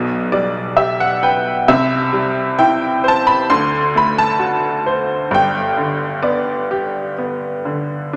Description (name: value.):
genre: classical, lyrical solo piano.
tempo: 66 BPM.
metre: 4/4.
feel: rubato.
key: unclear.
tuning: A4 = 440 Hz.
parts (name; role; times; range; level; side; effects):
bright upright piano; solo; 0.0-8.2 s; G1 to C6; -17 LUFS; equal; none.
room: moderate recital hall reverb, RT60 1.6 s.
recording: none.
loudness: -17 LUFS.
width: mono.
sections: 0.0-8.2 A section.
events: upright piano fill 0.0-1.7.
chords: 0.0 Em9/B; 1.7 C; 3.5 D7; 5.3 G.